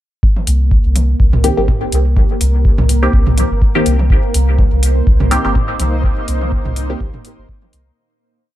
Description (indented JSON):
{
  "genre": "dub techno",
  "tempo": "124 BPM",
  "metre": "4/4",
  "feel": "swing 56% on 16ths",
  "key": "C minor",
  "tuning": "A4 = 442 Hz",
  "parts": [
    { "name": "electronic kick drum", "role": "drums", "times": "0.2-7.6 s", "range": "none", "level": "-14 LUFS", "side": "equal", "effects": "none" },
    { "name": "bubbling stepped-filter texture", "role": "texture", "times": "0.2-8.0 s", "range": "Bb3 to Bb4", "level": "-24 LUFS", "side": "equal", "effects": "chorus, built-in reverb, sidechain pumping" },
    { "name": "electronic toms", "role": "percussion", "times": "0.4-7.7 s", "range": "none", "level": "-24 LUFS", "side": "right 2 dB", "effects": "sidechain pumping on toms, dub echo" },
    { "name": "soft dub sub bass", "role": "bass", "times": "0.5-7.9 s", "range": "G1 to C2", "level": "-15 LUFS", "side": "equal", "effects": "sidechain pumping" },
    { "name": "electronic hi-hat", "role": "drums", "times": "0.5-7.8 s", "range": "none", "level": "-23 LUFS", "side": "left 2 dB", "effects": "none" },
    { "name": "filtered dub chord stab", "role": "stabs", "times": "1.4-7.1 s", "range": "Eb3 to G4", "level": "-20 LUFS", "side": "left 1 dB", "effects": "chorus, phaser, sidechain pumping, dub echo" },
    { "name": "granular cloud pad", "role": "sustained chords", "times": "4.8-7.9 s", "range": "Bb3 to C5", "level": "-26 LUFS", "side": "equal", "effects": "built-in reverb, sidechain pumping" }
  ],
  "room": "little or no reverb",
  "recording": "dark, warm production",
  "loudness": "-11 LUFS",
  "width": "side -14 dB against mid",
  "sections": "0.2-8.0 groove",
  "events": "fade-out 5.4-8.0",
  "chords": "0.2 Cm7"
}